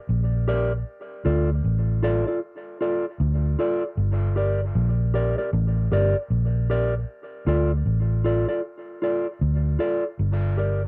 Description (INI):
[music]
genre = dub reggae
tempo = 77 BPM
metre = 4/4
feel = swing 62% on 16ths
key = G minor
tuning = A4 = 440 Hz
[part]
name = vintage muted fingered electric bass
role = bass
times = 0.1-10.9 s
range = G1 to D2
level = -24 LUFS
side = equal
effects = none
[part]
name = mellow electric guitar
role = accompaniment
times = 0.5-10.8 s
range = F4 to D5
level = -29 LUFS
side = equal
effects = harmonic tremolo, cassette tape, dub echo
[sound]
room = light reverb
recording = home recording on cassette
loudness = -24 LUFS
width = mono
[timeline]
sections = 0.0-10.2 A section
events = none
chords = 0.0 Gm; 0.9 Dm; 4.0 Gm; 7.1 Dm; 10.2 Gm